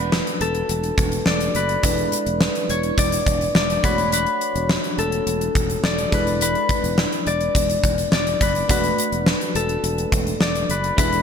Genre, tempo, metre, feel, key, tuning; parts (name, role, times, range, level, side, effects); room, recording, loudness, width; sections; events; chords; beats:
1980s-style pop; 105 BPM; 4/4; straight; E mixolydian; A4 = 440 Hz
Celtic harp; melody; 0.0-11.2 s; A4 to D5; -23 LUFS; left 3 dB
FM electric piano; accompaniment; 0.0-11.2 s; G#3 to C#5; -27 LUFS; right 1 dB; chorus, phaser
sustaining fretless electric bass; bass; 0.0-11.2 s; E1 to F#1; -26 LUFS; right 1 dB; analog chorus
gated 80s drum kit; drums; 0.1-11.2 s; hi-hat, kick drum, snare drum; -21 LUFS; equal; gated reverb
moderate lush hall reverb, RT60 2.7 s; bright 1980s-style digital production; -18 LUFS; side -7 dB against mid
0.0-11.2 A section
0.0 Bm7/E; 1.8 E7; 3.8 Dmaj7/E; 6.1 E7; 8.7 Bm7/E
0.12 0.69 1.27 | 1.84 2.41 2.98 3.55 | 4.12 4.70 5.27 5.84 | 6.41 6.98 7.55 8.12 | 8.70 9.27 9.84 10.41 | 10.98